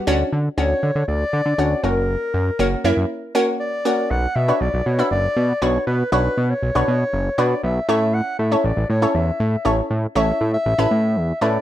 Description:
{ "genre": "dance-pop", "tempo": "119 BPM", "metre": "4/4", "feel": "straight", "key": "B minor", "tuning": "A4 = 441 Hz", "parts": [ { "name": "analog pluck", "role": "accompaniment", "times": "0.1-11.6 s", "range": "A#3 to E5", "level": "-21 LUFS", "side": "equal", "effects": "chorus" }, { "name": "fat analog bass", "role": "bass", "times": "0.1-11.6 s", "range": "F#1 to D3", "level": "-20 LUFS", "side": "equal", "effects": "none" }, { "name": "mellow clarinet", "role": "melody", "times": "0.6-11.6 s", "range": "A#4 to F#5", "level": "-23 LUFS", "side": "left 1 dB", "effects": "dub echo" } ], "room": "light reverb", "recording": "rough home demo mix", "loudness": "-17 LUFS", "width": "side -12 dB against mid", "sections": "0.0-4.1 A section; 4.1-11.6 B section", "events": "none", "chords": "0.1 Dmaj7; 1.8 F#; 4.1 Bmadd9; 7.9 A", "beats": "| 0.07 0.58 1.08 1.59 | 2.09 2.59 3.10 3.60 | 4.11 4.61 5.12 5.62 | 6.12 6.63 7.13 7.64 | 8.14 8.64 9.15 9.65 | 10.16 10.66 11.17" }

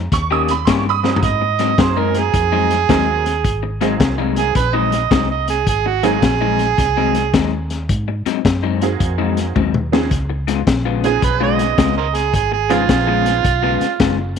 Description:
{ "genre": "electric blues shuffle", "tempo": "108 BPM", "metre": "4/4", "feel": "swing 66% on 8ths", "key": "Ab mixolydian", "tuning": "A4 = 442 Hz", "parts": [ { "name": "vintage muted fingered electric bass", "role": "bass", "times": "0.0-14.4 s", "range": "Gb1 to Ab2", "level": "-22 LUFS", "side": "equal", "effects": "none" }, { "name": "honky-tonk upright piano", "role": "accompaniment", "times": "0.1-13.4 s", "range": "Ab2 to Eb6", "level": "-22 LUFS", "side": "right 13 dB", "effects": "none" }, { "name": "electric guitar through a small old amp", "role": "riff", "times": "0.1-14.2 s", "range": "Ab2 to G4", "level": "-21 LUFS", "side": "left 14 dB", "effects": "wide subtle chorus" }, { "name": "crunchy breakbeat drum kit", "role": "drums", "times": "0.1-14.4 s", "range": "hi-hat, kick drum, snare drum, toms", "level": "-19 LUFS", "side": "left 3 dB", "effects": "none" }, { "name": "overdriven harmonica", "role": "second line", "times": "1.2-7.7, 11.1-14.3 s", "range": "F4 to Eb5", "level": "-18 LUFS", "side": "right 11 dB", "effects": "none" } ], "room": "moderate spring reverb, RT60 2.0 s", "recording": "1960s-style stereo with parts hard left and right", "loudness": "-14 LUFS", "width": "side -7 dB against mid", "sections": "0.0-1.2 A section; 1.2-14.4 A section", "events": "drum fill 1.0, 9.6-10.1; harmonica solo 1.2-14.4", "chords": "0.1 Eb7; 1.2 Ab7; 10.1 Db7", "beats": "0.12 0.68 | 1.23 1.79 2.34 2.90 | 3.45 4.01 4.56 5.12 | 5.67 6.23 6.78 7.34 | 7.89 8.45 9.01 9.56 | 10.12 10.67 11.23 11.78 | 12.34 12.89 13.45 14.00" }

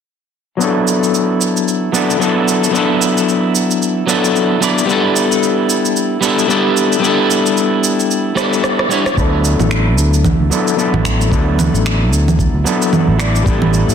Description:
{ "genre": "sunset chillout", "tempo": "112 BPM", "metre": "4/4", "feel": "swing 58% on 16ths", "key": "D major", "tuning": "A4 = 439 Hz", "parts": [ { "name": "electric guitar at the edge of break-up", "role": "accompaniment", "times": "0.6-13.9 s", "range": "F#3 to D5", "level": "-14 LUFS", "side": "left 1 dB", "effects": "auto-pan, low-pass filter, digital delay" }, { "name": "electronic shaker, rim click, congas and finger snaps", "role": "drums", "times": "0.6-13.9 s", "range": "none", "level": "-19 LUFS", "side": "right 3 dB", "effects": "soft clipping on snare" }, { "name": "sustaining fretless electric bass", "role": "bass", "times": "9.2-13.9 s", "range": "A1 to A2", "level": "-15 LUFS", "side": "equal", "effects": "none" }, { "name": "electronic kick drum", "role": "drums", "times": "9.2-13.6 s", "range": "none", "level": "-18 LUFS", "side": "equal", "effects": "none" } ], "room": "moderate plate reverb, RT60 2.5 s", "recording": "dense, heavily limited modern master", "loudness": "-12 LUFS", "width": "side -7 dB against mid", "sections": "0.6-9.2 A section; 9.2-13.9 B section", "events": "filter sweep on clean electric guitar 0.6-9.2; drum fill 8.4-9.2", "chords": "0.6 D69; 4.9 A9sus4; 9.2 D69", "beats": "| 0.60 1.14 1.68 2.21 | 2.75 3.28 3.82 4.36 | 4.89 5.43 5.96 6.50 | 7.03 7.57 8.11 8.64 | 9.18 9.71 10.25 10.78 | 11.32 11.86 12.39 12.93 | 13.46" }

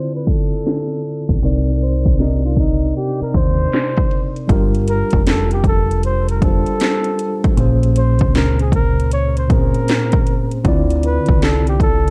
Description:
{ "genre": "lo-fi hip hop", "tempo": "78 BPM", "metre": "4/4", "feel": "swing 65% on 16ths", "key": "G minor", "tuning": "A4 = 438 Hz", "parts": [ { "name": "breathy flugelhorn", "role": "melody", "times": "0.0-12.1 s", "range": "Eb4 to Db5", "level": "-26 LUFS", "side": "equal", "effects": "tape echo, plate reverb" }, { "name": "mellow tine electric piano", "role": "accompaniment", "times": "0.0-12.1 s", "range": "Bb2 to D5", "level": "-22 LUFS", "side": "equal", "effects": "cassette tape" }, { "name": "house drum kit", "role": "drums", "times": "0.1-12.1 s", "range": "handclaps, hi-hat, kick drum, snare drum", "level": "-20 LUFS", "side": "equal", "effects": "overdrive" }, { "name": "deep dub fingered electric bass", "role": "bass", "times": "1.3-12.1 s", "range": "F1 to Eb2", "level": "-20 LUFS", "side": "equal", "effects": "none" } ], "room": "light reverb", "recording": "dark, warm production, low-pass filter", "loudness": "-16 LUFS", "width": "mono", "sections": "0.0-4.5 A section; 4.5-12.1 B section", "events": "filter sweep 0.0-4.5", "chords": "0.0 Dm9; 1.4 Cm9; 4.5 Gm9; 7.6 Bbm9; 10.6 Dm9", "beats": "0.65 | 1.42 2.19 2.96 3.72 | 4.49 5.26 6.03 6.80 | 7.57 8.34 9.11 9.88 | 10.65 11.42" }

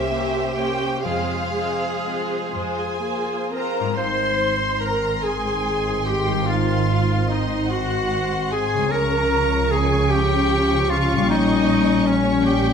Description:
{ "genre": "classical", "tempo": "40-53 BPM (dotted quarters)", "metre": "6/8", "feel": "rubato", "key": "unclear", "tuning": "A4 = 440 Hz", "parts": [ { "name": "rich studio violin section", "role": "melody", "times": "0.0-12.7 s", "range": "E5 to Db6", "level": "-30 LUFS", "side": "left 1 dB", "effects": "none" }, { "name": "warm studio violin section", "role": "second line", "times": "0.0-12.7 s", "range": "F4 to C6", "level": "-27 LUFS", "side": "left 1 dB", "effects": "none" }, { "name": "rich studio viola section", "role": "accompaniment", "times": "0.0-12.7 s", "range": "Ab3 to C5", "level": "-27 LUFS", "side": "right 2 dB", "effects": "none" }, { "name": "concert harp", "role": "arpeggios", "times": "0.0-12.7 s", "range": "Ab2 to C6", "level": "-28 LUFS", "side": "left 8 dB", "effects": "none" }, { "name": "dark studio cello section", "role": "bass", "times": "0.0-12.7 s", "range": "Ab2 to Ab4", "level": "-28 LUFS", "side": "right 2 dB", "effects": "none" }, { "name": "warm studio double bass section", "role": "bass", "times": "0.0-12.7 s", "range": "Ab1 to F2", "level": "-26 LUFS", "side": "right 4 dB", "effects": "none" }, { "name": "bright clarinet", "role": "second line", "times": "2.5-12.7 s", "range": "Db4 to C5", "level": "-24 LUFS", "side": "left 1 dB", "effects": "none" }, { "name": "mellow French horn section", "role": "sustained chords", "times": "4.0-12.7 s", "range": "Eb3 to Db4", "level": "-26 LUFS", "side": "left 4 dB", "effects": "none" } ], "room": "moderate recital hall reverb, RT60 1.4 s", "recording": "none", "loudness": "-18 LUFS", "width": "side -7 dB against mid", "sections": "0.0-4.0 A section; 4.0-12.7 B section", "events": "none", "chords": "0.0 C7b9; 1.1 Fm; 4.0 Ab; 8.9 Db; 11.3 Gdim/Bb", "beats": "| 1.06 2.54 | 3.99 5.24 | 6.47 7.70 | 8.92 10.11 | 11.30 12.45" }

